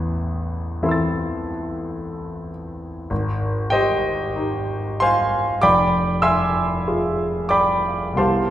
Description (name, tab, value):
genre	classical, impressionist solo piano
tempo	43-53 BPM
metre	4/4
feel	rubato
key	unclear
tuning	A4 = 440 Hz
part	clear concert grand piano	solo	0.0-8.5 s	F1 to A6	-19 LUFS	equal	none
room	wet recital hall reverb, RT60 1.4 s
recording	recorded in a church or concert hall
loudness	-18 LUFS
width	side -12 dB against mid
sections	0.0-8.5 A section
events	none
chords	0.0 Amadd9; 3.1 Abmaj7; 5.6 Fm6